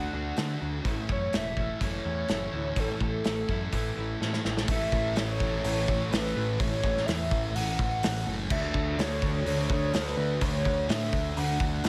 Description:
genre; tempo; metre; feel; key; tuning
rock, shoegaze and dream pop; 126 BPM; 4/4; straight; A major; A4 = 440 Hz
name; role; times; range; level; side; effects
pure sine lead; melody; 0.0-11.9 s; A4 to F#5; -35 LUFS; equal; chorus, slapback echo
overdriven electric guitar; riff; 0.0-11.9 s; A2 to A4; -38 LUFS; equal; reverse reverb
thick fuzz guitar; riff; 0.0-11.9 s; A2 to D4; -38 LUFS; equal; distortion, lush chorus
growling picked electric bass; bass; 0.0-11.9 s; E1 to D3; -35 LUFS; equal; overdrive
loose indie drum kit; drums; 0.4-11.9 s; crash cymbal, hi-hat, kick drum, snare drum; -33 LUFS; equal; none
room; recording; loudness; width
light reverb, small room ambience; none; -29 LUFS; mono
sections
0.0-4.7 A section; 4.7-11.9 B section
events
drum fill 4.2-4.7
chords
0.0 D; 0.9 A; 8.5 Dmaj7

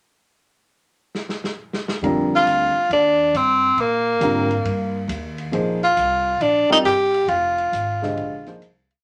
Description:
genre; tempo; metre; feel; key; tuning
modal jazz; 137 BPM; 4/4; swing 67% on 8ths; F dorian; A4 = 440 Hz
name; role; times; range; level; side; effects
vintage drum kit; drums; 1.1-9.0 s; hi-hat, ride cymbal, snare drum; -35 LUFS; equal; none
warm baby grand piano; accompaniment; 2.0-8.6 s; D3 to Eb5; -25 LUFS; equal; none
upright bass; bass; 2.0-9.0 s; F1 to Bb2; -32 LUFS; equal; none
clear tenor saxophone; melody; 2.4-8.6 s; Bb3 to G4; -20 LUFS; equal; none
room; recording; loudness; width
moderate studio reverb, RT60 0.6 s; none; -20 LUFS; mono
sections
0.3-2.0 pickup bar; 2.0-9.0 A section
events
drum fill 1.1-2.0; fade-out 7.3-9.0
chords
0.3 N.C.; 2.0 F9sus4; 5.5 Bb9sus4

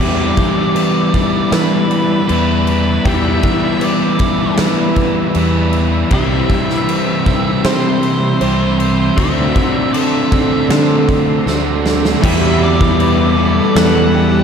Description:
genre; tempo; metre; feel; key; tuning
rock, shoegaze and dream pop; 78 BPM; 4/4; straight; E minor; A4 = 440 Hz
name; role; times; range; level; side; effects
octave-fuzz lead guitar; melody; 0.0-14.4 s; B4 to F#5; -23 LUFS; equal; distortion, diffuse ambient delay
sweeping resonant pad; sustained chords; 0.0-14.4 s; C4 to E6; -26 LUFS; left 1 dB; chorus
fingerpicked twelve-string acoustic guitar; arpeggios; 0.0-14.4 s; G4 to C5; -24 LUFS; right 4 dB; analog chorus, diffuse ambient delay
biting overdriven guitar; riff; 0.0-14.4 s; C3 to F#4; -19 LUFS; right 9 dB; reverse reverb
crunchy overdriven guitar; riff; 0.0-14.4 s; C3 to F#4; -18 LUFS; left 8 dB; analog chorus
picked electric bass; bass; 0.0-14.4 s; C2 to E3; -17 LUFS; equal; none
huge arena drum kit; drums; 0.4-13.9 s; crash cymbal, kick drum, snare drum; -18 LUFS; equal; none
overdriven electric guitar; riff; 12.2-14.4 s; E2 to E3; -22 LUFS; equal; none
room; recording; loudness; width
moderate lush hall reverb, RT60 2.6 s; dreamy mix soaked in reverb; -12 LUFS; side -7 dB against mid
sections
0.0-12.2 A section; 12.2-14.4 B section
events
drum fill 11.5-12.2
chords
0.0 Em7; 6.1 Cmaj7; 9.2 Dsus2; 12.2 Em7

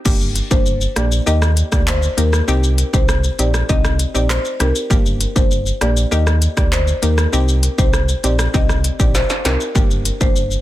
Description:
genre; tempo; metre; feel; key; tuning
dancehall; 99 BPM; 4/4; straight; G minor; A4 = 439 Hz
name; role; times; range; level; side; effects
hollow square pluck; accompaniment; 0.1-10.4 s; Bb3 to G4; -23 LUFS; left 1 dB; chorus, sidechain pumping
sub bass with octave; bass; 0.1-10.6 s; G1 to Eb2; -17 LUFS; equal; none
industrial drum kit; drums; 0.1-10.6 s; crash cymbal, handclaps, hi-hat, kick drum, rim click, shaker, snare drum; -18 LUFS; equal; soft clipping on snare
marimba with medium mallets; melody; 0.5-10.3 s; Bb4 to Eb5; -24 LUFS; left 1 dB; ping-pong delay
room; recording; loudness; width
digital ambience; dense, heavily limited modern master; -14 LUFS; side -15 dB against mid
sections
0.1-10.6 A section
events
drum fill 9.1-9.8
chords
0.1 Gm; 1.3 Eb; 2.5 Cm; 4.9 Gm; 6.1 Eb; 7.3 Cm; 9.8 Gm

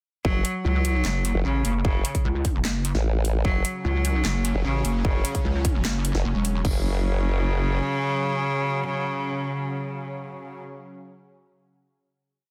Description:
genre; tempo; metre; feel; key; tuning
heavy wobble dubstep; 150 BPM; 4/4; half-time; F# minor; A4 = 440 Hz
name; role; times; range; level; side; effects
bright cello; melody; 0.2-10.6 s; C#3 to F#3; -30 LUFS; equal; digital delay
formant-sweep wobble bass; bass; 0.2-7.8 s; F#1 to A1; -26 LUFS; equal; chorus, overdrive
big-room dance drum kit; drums; 0.2-6.7 s; crash cymbal, kick drum; -27 LUFS; equal; none
big-room dance drum kit; drums; 0.4-6.5 s; handclaps, hi-hat, snare drum; -32 LUFS; equal; none
pulsing pluck wobble bass; bass; 0.6-6.6 s; E1 to C#2; -26 LUFS; equal; chorus, overdrive
supersaw pad; sustained chords; 3.4-10.6 s; C#3 to C#4; -36 LUFS; equal; sidechain pumping
room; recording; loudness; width
digital ambience; dense, heavily limited modern master; -25 LUFS; mono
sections
0.2-6.6 drop; 6.6-9.8 final chord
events
drop 0.2-6.6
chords
0.2 F#5

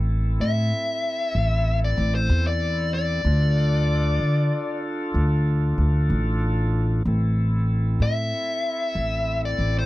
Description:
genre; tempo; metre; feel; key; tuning
slow blues; 63 BPM (dotted quarters); 12/8; straight; A minor; A4 = 440 Hz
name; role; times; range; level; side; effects
bright tonewheel organ; sustained chords; 0.0-9.9 s; C4 to A4; -31 LUFS; equal; slow rotary speaker
upright bass; bass; 0.0-9.9 s; A1 to D3; -21 LUFS; equal; none
dark smooth lead guitar; melody; 0.4-9.9 s; C5 to E5; -26 LUFS; left 3 dB; overdrive
room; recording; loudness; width
little or no reverb; dry, close 1970s-style studio recording; -20 LUFS; side -17 dB against mid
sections
0.0-9.9 A section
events
lead electric guitar solo 0.0-9.9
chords
0.0 Am; 3.3 Dm; 7.1 Am

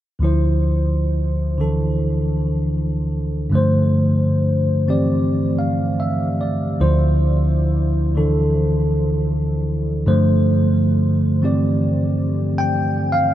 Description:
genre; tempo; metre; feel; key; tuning
jazz; 73 BPM; 4/4; swing 66% on 8ths; unclear; A4 = 440 Hz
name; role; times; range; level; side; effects
bell-like tine electric piano; accompaniment; 0.2-13.3 s; D2 to G5; -16 LUFS; equal; lush chorus
room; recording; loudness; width
moderate huge ambient reverb, RT60 8.2 s; dreamy mix soaked in reverb; -16 LUFS; side -12 dB against mid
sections
0.2-13.3 A section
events
none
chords
0.2 Dm7; 3.5 G9sus4; 6.8 Dm7; 10.1 G9sus4

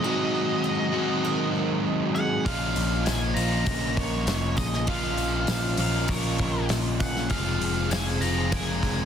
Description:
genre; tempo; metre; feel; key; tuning
rock, shoegaze and dream pop; 99 BPM; 4/4; straight; Bb minor; A4 = 440 Hz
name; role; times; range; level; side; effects
octave-fuzz lead guitar; melody; 0.0-9.1 s; Db5 to Bb5; -31 LUFS; equal; distortion, digital delay
dark brass ensemble; sustained chords; 0.0-9.1 s; F3 to Eb5; -39 LUFS; right 1 dB; none
picked twelve-string acoustic guitar; arpeggios; 0.0-9.1 s; F4 to Eb5; -36 LUFS; right 1 dB; lush chorus, digital delay
crunchy overdriven guitar; riff; 0.0-9.1 s; F2 to Ab4; -29 LUFS; right 10 dB; reverse reverb
overdriven electric guitar; riff; 0.0-9.1 s; Ab2 to Gb4; -29 LUFS; left 11 dB; wide subtle chorus
picked electric bass; bass; 2.5-9.1 s; F1 to Bb1; -29 LUFS; equal; none
loose indie drum kit; drums; 2.5-9.0 s; hi-hat, kick drum, snare drum; -30 LUFS; equal; none
tambourine; percussion; 2.8-8.7 s; none; -41 LUFS; left 10 dB; none
room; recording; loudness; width
studio reverb; dense, heavily limited modern master; -23 LUFS; side -8 dB against mid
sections
0.0-9.1 A section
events
none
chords
0.0 Ab5; 2.5 Bbm; 7.3 Fm7

